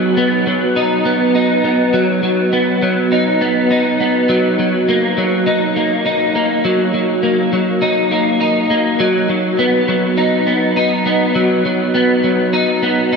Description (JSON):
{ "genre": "dream pop", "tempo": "102 BPM", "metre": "4/4", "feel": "straight", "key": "unclear", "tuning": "A4 = 440 Hz", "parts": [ { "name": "electric guitar at the edge of break-up", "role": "solo", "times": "0.0-13.2 s", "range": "F#3 to D#4", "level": "-13 LUFS", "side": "equal", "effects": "ensemble chorus, ping-pong delay" } ], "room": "wet huge ambient reverb, RT60 8.4 s", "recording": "dreamy mix soaked in reverb", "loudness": "-13 LUFS", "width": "side -4 dB against mid", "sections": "0.0-13.2 A section", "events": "none", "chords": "0.0 B/F#; 4.3 F#6; 9.0 B/F#" }